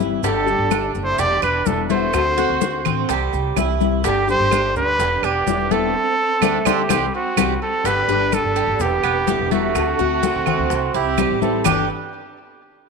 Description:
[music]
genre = latin, Cuban son and guajira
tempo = 126 BPM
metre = 4/4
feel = straight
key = G major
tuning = A4 = 440 Hz
[part]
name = nylon-string guitar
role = accompaniment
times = 0.0-11.9 s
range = G2 to G4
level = -25 LUFS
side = left 11 dB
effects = none
[part]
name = Cuban tres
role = arpeggios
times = 0.0-11.9 s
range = G3 to G4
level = -24 LUFS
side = right 11 dB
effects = tape echo
[part]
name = upright bass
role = bass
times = 0.0-11.9 s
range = E1 to D2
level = -26 LUFS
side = right 1 dB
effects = none
[part]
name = bongos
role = percussion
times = 0.0-11.8 s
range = none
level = -31 LUFS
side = left 12 dB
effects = none
[part]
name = congas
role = percussion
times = 0.0-11.8 s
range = none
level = -24 LUFS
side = left 16 dB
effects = none
[part]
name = maracas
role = percussion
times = 0.0-11.8 s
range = none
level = -34 LUFS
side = right 20 dB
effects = none
[part]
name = clear trumpet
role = melody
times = 0.2-11.9 s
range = F#4 to D5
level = -20 LUFS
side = right 1 dB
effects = none
[part]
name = warm studio violin section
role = second line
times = 0.2-11.9 s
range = A3 to G4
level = -29 LUFS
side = right 12 dB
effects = none
[part]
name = claves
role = percussion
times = 0.7-11.8 s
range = none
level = -27 LUFS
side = right 16 dB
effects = none
[sound]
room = wet spring reverb, RT60 2.1 s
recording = 1960s-style stereo with parts hard left and right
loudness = -16 LUFS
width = side -4 dB against mid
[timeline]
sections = 0.0-7.9 A section; 7.9-11.7 B section; 11.7-12.9 C section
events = band accent 5.9-7.9; drum fill 7.1-7.9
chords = 0.2 Gsus2; 1.2 Em7; 2.1 D7; 3.1 C; 4.0 G5; 5.0 Em7; 5.9 D5; 6.9 C; 7.9 Gsus2; 8.8 Em7; 9.8 D7; 10.7 C; 11.7 G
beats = | 0.23 0.71 1.19 1.66 | 2.14 2.61 3.09 3.57 | 4.04 4.52 5.00 5.47 | 5.95 6.42 6.90 7.38 | 7.85 8.33 8.80 9.28 | 9.76 10.23 10.71 11.18 | 11.66

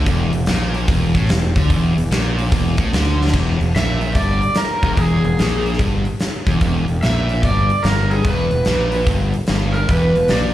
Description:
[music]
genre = blues rock power trio and southern rock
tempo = 146 BPM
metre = 4/4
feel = swing 65% on 8ths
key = unclear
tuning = A4 = 441 Hz
[part]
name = sludgy distorted guitar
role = riff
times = 0.0-10.5 s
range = E2 to D3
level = -20 LUFS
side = left 1 dB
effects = overdrive
[part]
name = fuzz fingered electric bass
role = bass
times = 0.0-10.5 s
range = E1 to D2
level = -19 LUFS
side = equal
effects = overdrive
[part]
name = huge arena drum kit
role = drums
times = 0.1-10.4 s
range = crash cymbal, hi-hat, kick drum, snare drum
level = -21 LUFS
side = equal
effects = none
[part]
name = overdriven slide guitar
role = melody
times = 3.8-10.5 s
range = G#4 to E5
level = -21 LUFS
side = right 1 dB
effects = plate reverb, slapback echo
[sound]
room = light reverb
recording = live gig heard through the venue's PA, club reverb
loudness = -15 LUFS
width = side -13 dB against mid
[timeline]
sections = 0.0-3.3 A section; 3.3-10.5 B section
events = drum fill 3.1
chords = 0.0 A#maj7#11/E; 3.3 N.C.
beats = | 0.08 0.49 0.89 1.30 | 1.71 2.12 2.53 2.94 | 3.35 3.75 4.16 4.57 | 4.98 5.39 5.80 6.21 | 6.62 7.03 7.44 7.85 | 8.26 8.67 9.08 9.49 | 9.90 10.31

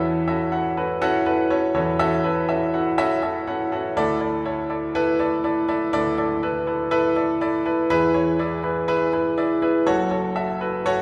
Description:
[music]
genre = pop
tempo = 122 BPM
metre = 4/4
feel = straight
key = unclear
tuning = A4 = 440 Hz
[part]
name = clear grand piano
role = solo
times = 0.0-11.0 s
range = F#1 to F#5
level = -22 LUFS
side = equal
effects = none
[sound]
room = wet recital hall reverb, RT60 1.3 s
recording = recorded in a church or concert hall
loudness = -22 LUFS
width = mono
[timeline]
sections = 0.0-11.0 A section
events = none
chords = 0.0 A6/E; 4.0 Dsus2; 7.9 E; 9.9 F#m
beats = | 0.03 0.53 1.02 1.51 | 2.00 2.49 2.98 3.48 | 3.97 4.46 4.95 5.44 | 5.93 6.43 6.92 7.41 | 7.90 8.39 8.88 9.38 | 9.87 10.36 10.85

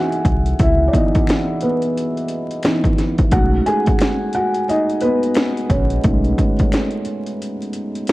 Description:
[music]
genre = lo-fi hip hop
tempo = 88 BPM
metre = 4/4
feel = swing 61% on 16ths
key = unclear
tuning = A4 = 440 Hz
[part]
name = felt-muted upright piano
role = accompaniment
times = 0.0-8.1 s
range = E3 to G#5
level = -18 LUFS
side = equal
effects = cassette tape
[part]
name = techno drum kit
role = drums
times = 0.1-8.1 s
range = hi-hat, kick drum, snare drum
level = -18 LUFS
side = equal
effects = none
[part]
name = sub bass with octave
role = bass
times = 0.3-6.3 s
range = A#1 to C#2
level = -19 LUFS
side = equal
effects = none
[part]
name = finger snap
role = percussion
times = 1.3-8.1 s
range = none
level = -35 LUFS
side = left 5 dB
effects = none
[sound]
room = light reverb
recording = dark, warm production, vinyl crackle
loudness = -15 LUFS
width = side -18 dB against mid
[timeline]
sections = 0.0-8.1 A section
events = felt piano solo 0.0-8.1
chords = 0.0 C#m9; 3.3 B13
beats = | 0.59 1.27 1.95 2.64 | 3.32 4.00 4.68 5.36 | 6.04 6.73 7.41 8.09

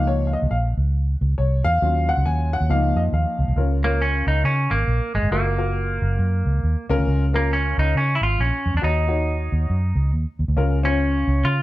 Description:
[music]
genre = uptempo 1960s-style soul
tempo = 137 BPM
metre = 4/4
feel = swing 60% on 8ths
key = Db major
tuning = A4 = 440 Hz
[part]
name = warm upright piano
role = accompaniment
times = 0.0-11.5 s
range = Db3 to Ab5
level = -24 LUFS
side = left 2 dB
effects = none
[part]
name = vintage muted fingered electric bass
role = bass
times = 0.0-11.6 s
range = Gb1 to Db3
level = -20 LUFS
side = equal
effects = none
[part]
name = semi-hollow electric guitar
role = melody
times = 3.8-11.6 s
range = Ab3 to F4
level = -24 LUFS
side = right 1 dB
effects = none
[sound]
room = light reverb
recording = dark, warm production, faint mains hum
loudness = -18 LUFS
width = side -16 dB against mid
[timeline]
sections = 0.0-3.6 A section; 3.6-11.6 B section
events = upright piano solo 0.0-3.6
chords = 0.0 Db6; 1.8 Ebm7; 2.7 Db6; 5.3 Gbmaj7; 6.8 Db6; 8.8 Ebm7; 10.6 Db6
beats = | 0.07 0.51 0.94 1.38 | 1.82 2.25 2.69 3.13 | 3.56 4.00 4.44 4.88 | 5.32 5.75 6.19 6.63 | 7.07 7.50 7.94 8.38 | 8.82 9.26 9.69 10.13 | 10.57 11.01 11.44

